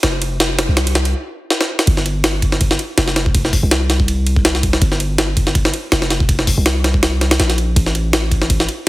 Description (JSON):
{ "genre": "drum and bass, jungle", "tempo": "163 BPM", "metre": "4/4", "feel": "swing 54% on 16ths", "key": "G minor", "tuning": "A4 = 441 Hz", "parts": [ { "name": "long sustained 808-style bass", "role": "bass", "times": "0.0-8.7 s", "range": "F1 to C2", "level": "-18 LUFS", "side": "equal", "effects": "none" }, { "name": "jungle sampler-style drum kit", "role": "drums", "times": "0.0-8.8 s", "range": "hi-hat, kick drum, ride cymbal, snare drum", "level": "-15 LUFS", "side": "equal", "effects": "high-pass filter on kick, high-pass filter on cymbals, high-pass filter on snare, high-pass filter on hats" } ], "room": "light reverb, digital ambience", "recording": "heavily compressed radio sound, multiband compression", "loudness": "-14 LUFS", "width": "side -18 dB against mid", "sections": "0.0-1.9 A section; 1.9-8.9 B section", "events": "build-up 0.0-1.9; drum fill 0.0-1.1, 1.5-1.9; stop 1.1-1.9; drop 1.9-8.9", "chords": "none" }